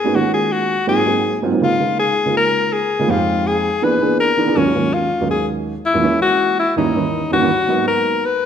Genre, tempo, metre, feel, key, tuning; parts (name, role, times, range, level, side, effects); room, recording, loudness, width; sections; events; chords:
jazz; 163 BPM; 4/4; straight; Eb minor; A4 = 444 Hz
bright alto saxophone; melody; 0.0-8.5 s; Db4 to B4; -17 LUFS; left 4 dB
dark upright piano; accompaniment; 0.0-8.2 s; Eb2 to G#4; -18 LUFS; right 4 dB
wet recital hall reverb, RT60 1.4 s; -15 LUFS; side -8 dB against mid
0.0-7.5 A section
0.1 Ebm11; 0.9 Ab13; 1.6 Db6; 3.1 Fm7; 3.8 E7#11; 4.6 Ebm11; 6.0 Bbm7b5; 6.8 Eb7b9; 7.5 Abm9